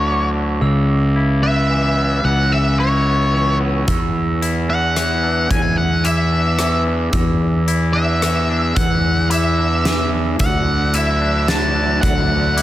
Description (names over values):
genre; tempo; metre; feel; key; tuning
post-rock; 110 BPM; 3/4; straight; unclear; A4 = 440 Hz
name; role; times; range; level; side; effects
octave-fuzz lead guitar; melody; 0.0-12.6 s; C#5 to A5; -20 LUFS; equal; distortion, analog delay
glockenspiel with soft plastic mallets; arpeggios; 0.0-12.6 s; D6 to F#6; -28 LUFS; right 6 dB; analog delay
twangy electric guitar; arpeggios; 0.0-12.6 s; E2 to E4; -24 LUFS; left 3 dB; analog delay
fuzz fingered electric bass; bass; 0.0-12.6 s; C#2 to E2; -18 LUFS; equal; overdrive
huge arena drum kit; drums; 3.9-12.6 s; hi-hat, kick drum, rim click, snare drum; -22 LUFS; equal; none
rich studio string section; sustained chords; 10.4-12.6 s; F#3 to D5; -28 LUFS; equal; none
room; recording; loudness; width
light reverb, small room ambience; none; -14 LUFS; side -14 dB against mid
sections
0.0-12.6 A section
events
none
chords
0.0 Dadd9; 0.6 C#m7; 3.9 E7sus2; 10.4 Dadd9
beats
0.08 | 0.62 1.16 1.71 | 2.25 2.79 3.33 | 3.88 4.42 4.96 | 5.51 6.05 6.59 | 7.14 7.68 8.23 | 8.77 9.31 9.86 | 10.40 10.95 11.49 | 12.04 12.58